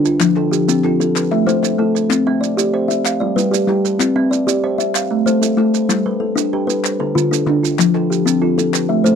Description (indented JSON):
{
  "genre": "southern african traditional, mbira-style interlocking cycle",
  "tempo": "126 BPM (dotted quarters)",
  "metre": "12/8",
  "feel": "straight",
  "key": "C major",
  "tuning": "A4 = 440 Hz",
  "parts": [
    { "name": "kalimba", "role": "arpeggios", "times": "0.0-9.2 s", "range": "D3 to E5", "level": "-16 LUFS", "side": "left 4 dB", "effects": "none" },
    { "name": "kalimba", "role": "arpeggios", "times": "0.0-9.2 s", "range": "D3 to F5", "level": "-19 LUFS", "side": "right 6 dB", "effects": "none" },
    { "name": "maracas", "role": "percussion", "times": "0.1-9.2 s", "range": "none", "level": "-23 LUFS", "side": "right 27 dB", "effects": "none" },
    { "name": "group handclap", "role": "percussion", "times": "0.2-8.9 s", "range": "none", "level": "-25 LUFS", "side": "left 16 dB", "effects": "none" }
  ],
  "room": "light reverb",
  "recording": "dry, close 1970s-style studio recording",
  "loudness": "-14 LUFS",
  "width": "side -7 dB against mid",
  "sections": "0.0-9.2 A section",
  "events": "none",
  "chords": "0.2 F; 1.2 Am; 2.1 C; 3.1 G; 4.0 C; 5.0 Am; 5.9 G; 6.8 Dm; 7.8 F"
}